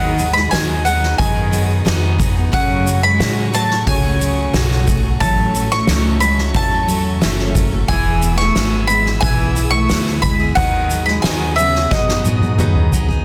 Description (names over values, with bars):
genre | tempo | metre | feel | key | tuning
indie folk with a building arrangement | 90 BPM | 4/4 | straight | unclear | A4 = 441 Hz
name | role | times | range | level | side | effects
bowl-back mandolin | melody | 0.0-12.9 s | D#5 to C#6 | -21 LUFS | equal | slapback echo
warm cello | second line | 0.0-12.9 s | B2 to A3 | -26 LUFS | equal | slapback echo
clear upright piano | accompaniment | 0.0-13.2 s | F#1 to F#5 | -32 LUFS | equal | none
picked steel-string acoustic guitar | accompaniment | 0.0-13.2 s | F#2 to A4 | -26 LUFS | equal | none
warm studio string section | sustained chords | 0.0-13.2 s | E4 to E6 | -34 LUFS | equal | none
upright bass | bass | 0.0-13.2 s | E1 to A2 | -22 LUFS | equal | none
soft-mallet drum kit | drums | 0.2-13.2 s | hi-hat, kick drum, snare drum, toms | -22 LUFS | equal | none
tube shaker | percussion | 0.2-13.2 s | none | -33 LUFS | equal | none
room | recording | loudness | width
little or no reverb | dense, heavily limited modern master | -16 LUFS | mono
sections
0.0-13.2 A section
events
drum fill 11.9-13.2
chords
0.0 B6/D#; 2.5 F#madd9; 5.2 A6; 7.9 E; 10.6 B6/D#